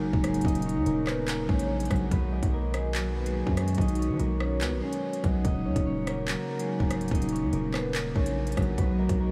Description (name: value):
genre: hip hop, drill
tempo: 144 BPM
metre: 4/4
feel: half-time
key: Eb minor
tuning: A4 = 441 Hz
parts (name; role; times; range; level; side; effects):
- concert harp; melody; 0.0-9.3 s; Gb3 to Eb5; -34 LUFS; equal; low-pass filter, tape echo
- dark woodwind section; sustained chords; 0.0-9.3 s; B2 to F#4; -36 LUFS; equal; none
- distorted 808-style bass; bass; 0.1-9.3 s; Db1 to F#3; -32 LUFS; equal; distortion
- drill drum kit; drums; 0.1-9.2 s; handclaps, hi-hat, kick drum, rim click; -33 LUFS; equal; none
- soft octave-layered synth lead; second line; 1.1-9.3 s; Bb4 to D#5; -40 LUFS; equal; chorus, phaser, tape echo
room: light reverb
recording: small room ambience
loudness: -28 LUFS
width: mono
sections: 0.0-9.3 A section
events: none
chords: 0.0 Ebm7; 2.1 B; 5.4 Ebm7; 8.8 B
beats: 0.03 | 0.45 0.86 1.28 1.70 | 2.11 2.53 2.95 3.36 | 3.78 4.20 4.61 5.03 | 5.45 5.86 6.28 6.70 | 7.11 7.53 7.95 8.36 | 8.78 9.20